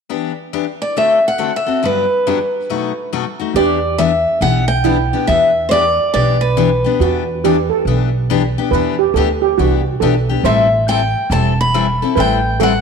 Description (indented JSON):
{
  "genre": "acoustic string swing (jazz manouche)",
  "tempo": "139 BPM",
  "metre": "4/4",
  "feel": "swing 64% on 8ths",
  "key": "E minor",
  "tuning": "A4 = 441 Hz",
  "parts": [
    { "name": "picked steel-string acoustic guitar", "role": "accompaniment", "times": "0.1-12.7 s", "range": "G2 to A4", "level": "-19 LUFS", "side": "left 10 dB", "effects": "none" },
    { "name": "picked steel-string acoustic guitar", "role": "melody", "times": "0.8-7.7, 10.5-12.8 s", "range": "B4 to B5", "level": "-16 LUFS", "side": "equal", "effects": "none" },
    { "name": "upright bass", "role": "bass", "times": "3.5-12.8 s", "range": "E1 to E2", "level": "-18 LUFS", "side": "right 2 dB", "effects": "none" },
    { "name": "steel pan", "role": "second line", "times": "3.6-12.8 s", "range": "E4 to C5", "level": "-18 LUFS", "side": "right 11 dB", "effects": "none" }
  ],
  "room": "moderate echo chamber reverb, RT60 1.8 s, studio ambience",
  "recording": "1960s-style stereo with parts hard left and right",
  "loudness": "-13 LUFS",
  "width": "side -6 dB against mid",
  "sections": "0.1-3.6 A section; 3.6-12.8 B section",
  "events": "none",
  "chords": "0.1 Em7; 1.0 D7; 1.8 Gmaj7; 2.7 B7; 3.6 Em7; 10.4 Am9"
}